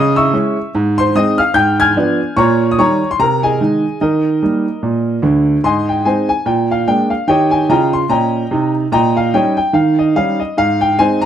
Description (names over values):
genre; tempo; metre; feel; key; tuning
jazz, stride piano; 146 BPM; 4/4; swing 58% on 8ths; Ab major; A4 = 440 Hz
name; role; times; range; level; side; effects
warm grand piano; solo; 0.0-11.3 s; D2 to Ab6; -12 LUFS; equal; none
room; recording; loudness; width
moderate club reverb, RT60 0.8 s; none; -12 LUFS; side -9 dB against mid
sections
0.0-5.6 A section; 5.6-11.3 B section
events
none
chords
0.0 Dbm; 0.7 Ab; 1.5 Abdim7; 2.4 Eb7/Bb; 3.2 Ab/C; 4.0 Eb; 5.6 Ab; 6.5 Bb7; 7.3 Eb7; 8.9 Eb7/Bb; 9.7 Eb7; 10.6 Ab